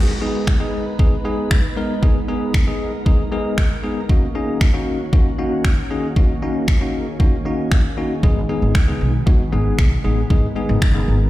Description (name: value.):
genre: dance-pop.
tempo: 116 BPM.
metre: 4/4.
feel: straight.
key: G# minor.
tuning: A4 = 440 Hz.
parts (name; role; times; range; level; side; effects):
bell-like tine electric piano; accompaniment; 0.0-11.2 s; G#3 to A#4; -23 LUFS; left 2 dB; fast stereo tremolo, sidechain pumping.
glassy FM pad; sustained chords; 0.0-11.3 s; D#3 to B4; -28 LUFS; right 2 dB; ensemble chorus, built-in reverb, sidechain pumping.
pop drum kit; drums; 0.5-10.9 s; finger snaps, kick drum; -16 LUFS; equal; none.
upright bass; bass; 8.2-11.3 s; F#1 to C#2; -18 LUFS; equal; sidechain pumping.
room: light reverb.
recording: played on a big sound system in a bare room, large studio reverb.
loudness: -16 LUFS.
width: side -16 dB against mid.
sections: 0.0-11.3 A section.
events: none.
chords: 0.0 G#m; 4.1 F#6; 8.2 G#m.